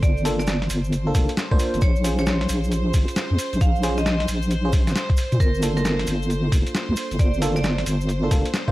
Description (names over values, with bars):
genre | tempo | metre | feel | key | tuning
UK garage, two-step garage | 134 BPM | 4/4 | swing 64% on 16ths | G minor | A4 = 440 Hz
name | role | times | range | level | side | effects
vibraphone with hard mallets | melody | 0.0-7.8 s | Bb4 to F5 | -31 LUFS | right 2 dB | analog delay
bright studio violin section | sustained chords | 0.0-8.7 s | C5 | -34 LUFS | equal | sidechain pumping
FM electric piano | stabs | 0.0-8.7 s | Bb3 to C5 | -28 LUFS | right 1 dB | chorus
deep soft wobble bass | bass | 0.0-8.7 s | F1 to Bb2 | -22 LUFS | equal | chorus
boom bap sampler-style drum kit | drums | 0.0-8.7 s | hi-hat, snare drum | -28 LUFS | equal | none
electronic kick drum | drums | 0.0-8.7 s | none | -19 LUFS | equal | none
cabasa | percussion | 0.0-8.7 s | none | -38 LUFS | right 2 dB | none
room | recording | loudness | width
digital ambience | dry, gritty hardware recording, cassette tape | -19 LUFS | side -17 dB against mid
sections
0.0-8.7 A section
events
none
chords
0.0 Gm9; 1.8 Bbm9; 5.4 Gm9